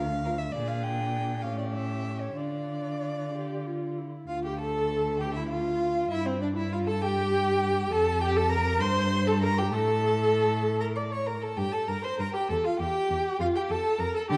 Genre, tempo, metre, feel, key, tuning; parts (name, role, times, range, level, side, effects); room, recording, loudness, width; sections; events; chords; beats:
quick classical-period movement for string quartet; 66 BPM (dotted quarters); 6/8; rubato; D minor; A4 = 438 Hz
warm violin; melody; 0.0-14.4 s; C5 to D6; -35 LUFS; equal
rich violin; second line; 0.0-14.4 s; C4 to D5; -37 LUFS; equal
rich viola; accompaniment; 0.0-14.4 s; C4 to D5; -32 LUFS; equal
rich cello; bass; 0.0-14.4 s; D2 to D3; -33 LUFS; equal
moderate scoring stage reverb, RT60 1.6 s; dark, warm production; -28 LUFS; mono
0.0-4.3 A section; 4.3-14.4 A section
0.0 Bb/D (rootless); 0.5 Bb7; 1.4 A7; 2.4 Dm; 6.1 G13sus4; 7.0 N.C.; 7.9 Fadd11; 8.8 Gmadd11; 9.7 N.C.; 10.6 Bbmmaj7/A; 11.6 Gmadd9; 12.5 Emadd11; 13.4 Fadd9
| 0.54 1.43 | 2.38 3.34 | 4.29 5.21 | 6.12 7.02 | 7.92 8.81 | 9.72 10.64 | 11.57 12.49 | 13.39 14.30